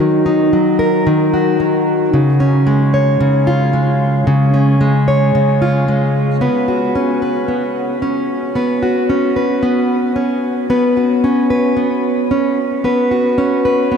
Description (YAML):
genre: folktronica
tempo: 112 BPM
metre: 4/4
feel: straight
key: B lydian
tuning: A4 = 440 Hz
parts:
  - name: fingerpicked plugged-in steel-string acoustic guitar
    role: solo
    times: 0.0-14.0 s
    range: C#3 to C#5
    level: -12 LUFS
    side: equal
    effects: analog delay
room: wet huge ambient reverb, RT60 7.8 s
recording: dreamy mix soaked in reverb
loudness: -12 LUFS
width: side -7 dB against mid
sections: 0.0-6.4 A section; 6.4-14.0 B section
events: none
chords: 0.0 D#m; 2.1 C#; 6.4 Bsus2